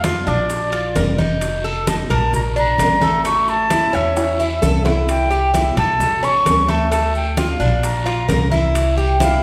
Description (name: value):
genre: latin, Cuban son and guajira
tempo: 131 BPM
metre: 4/4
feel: straight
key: unclear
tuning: A4 = 443 Hz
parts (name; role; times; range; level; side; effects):
- concert flute; melody; 0.0-9.4 s; D5 to C#6; -22 LUFS; equal; none
- Cuban tres; arpeggios; 0.0-9.4 s; A3 to Bb4; -23 LUFS; equal; none
- upright bass; bass; 0.0-9.4 s; F1 to F2; -24 LUFS; equal; none
- bongos; percussion; 0.0-9.4 s; none; -30 LUFS; equal; none
- congas; percussion; 0.0-9.4 s; none; -26 LUFS; equal; none
- guiro; percussion; 0.0-9.4 s; none; -36 LUFS; equal; none
- maracas; percussion; 0.0-9.4 s; none; -39 LUFS; equal; none
- timbales; percussion; 0.0-9.4 s; none; -32 LUFS; equal; none
room: wet recital hall reverb, RT60 1.2 s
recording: recorded in a church or concert hall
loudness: -17 LUFS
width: mono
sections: 0.0-9.4 A section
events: drum fill 4.2-5.1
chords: 0.5 Bb; 1.4 F7; 2.3 Bb; 3.2 A; 5.1 C; 6.0 A; 6.9 Dm; 7.8 Bb; 8.8 C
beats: 0.04 0.50 0.96 | 1.42 1.87 2.33 2.79 | 3.25 3.71 4.17 4.62 | 5.08 5.54 6.00 6.46 | 6.92 7.38 7.83 8.29 | 8.75 9.21